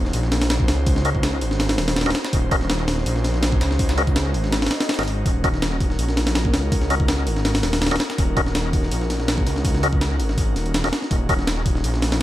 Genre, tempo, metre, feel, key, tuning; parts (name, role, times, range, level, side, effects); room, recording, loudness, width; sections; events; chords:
drum and bass, jungle; 164 BPM; 4/4; straight; Eb dorian; A4 = 440 Hz
airy breathy pad; sustained chords; 0.0-12.2 s; Db4 to C5; -29 LUFS; equal; chorus, vintage 12-bit sampler grit
detuned saw bass; bass; 0.0-12.2 s; Eb1 to Db2; -22 LUFS; equal
breakbeat sampler-style drum kit; drums; 0.0-12.2 s; hi-hat, kick drum, snare drum; -22 LUFS; equal; studio reverb
breakbeat sampler-style drum kit; drums; 0.1-12.1 s; hi-hat, snare drum; -34 LUFS; right 1 dB; high-pass filter on hats, studio reverb, high-pass filter on snare, high-pass filter on room
tonewheel organ; stabs; 1.1-11.3 s; Db4 to Eb5; -27 LUFS; left 2 dB; overdrive, fast rotary speaker, vintage 12-bit sampler grit, dub echo
swell; sound effects; 4.6-5.3 s; -34 LUFS; left 2 dB
digital ambience; -18 LUFS; side -14 dB against mid
0.0-12.2 A section
kick drops out 4.5-5.3; swell 4.6-5.3
0.0 Ebm7